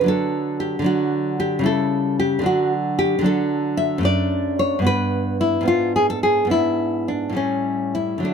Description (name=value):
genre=classical, baroque-style dance for nylon-string guitar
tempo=67-77 BPM (dotted quarters)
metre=6/8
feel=rubato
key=D major from 3.3 s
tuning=A4 = 440 Hz
part: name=nylon-string guitar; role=solo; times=0.0-8.3 s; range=F#2 to E5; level=-18 LUFS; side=equal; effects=none
room=light reverb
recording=close, detailed microphones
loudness=-18 LUFS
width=side -6 dB against mid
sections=0.0-8.3 A section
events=none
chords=0.1 D; 1.7 A7/C#; 2.5 D; 4.1 D/F#; 4.9 Em/G; 5.7 G#dim; 7.4 A7